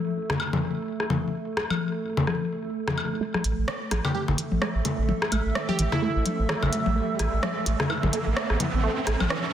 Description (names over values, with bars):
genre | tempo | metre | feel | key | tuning
minimal techno | 128 BPM | 4/4 | swing 57% on 16ths | unclear | A4 = 441 Hz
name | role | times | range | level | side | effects
warbly tape-like pad | texture | 0.0-9.5 s | A3 to E6 | -32 LUFS | right 3 dB | chorus, built-in reverb
round analog bass | bass | 0.2-9.3 s | A1 to A2 | -27 LUFS | right 1 dB | high-pass filter
garage drum kit | percussion | 0.3-9.3 s | congas, rim click, toms, woodblock | -27 LUFS | left 3 dB | soft clipping on snare, tape echo
resonant blip pluck | riff | 3.2-9.3 s | E3 to A3 | -33 LUFS | right 4 dB | phaser, tape echo
riser | sound effects | 5.4-9.5 s | none | -34 LUFS | right 5 dB | none
minimal click drum kit | drums | 3.4-9.4 s | hi-hat, rim click | -32 LUFS | right 1 dB | soft clipping on snare
plucky unison lead | melody | 4.0-6.4 s | E4 to G4 | -33 LUFS | right 4 dB | tape echo
room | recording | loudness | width
moderate lush hall reverb, RT60 2.0 s | dense, heavily limited modern master | -24 LUFS | side -10 dB against mid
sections
0.0-3.2 A section; 3.2-9.5 B section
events
build-up 3.2-9.5; filter sweep on synth arpeggio sound 3.2-9.5; riser 5.4-9.5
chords
0.0 A5